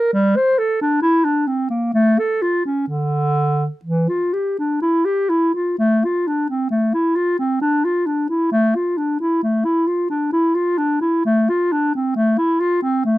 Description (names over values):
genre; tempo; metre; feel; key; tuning
classical, baroque-style fantasia for unaccompanied clarinet; 61-68 BPM; 3/4; rubato; D minor, A minor from 5.8 s; A4 = 441 Hz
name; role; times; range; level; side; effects
mellow clarinet; solo; 0.0-13.2 s; D3 to C5; -16 LUFS; equal; none
room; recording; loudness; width
light reverb; close, detailed microphones; -16 LUFS; side -16 dB against mid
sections
0.0-5.8 A section; 5.8-13.2 A section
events
none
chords
none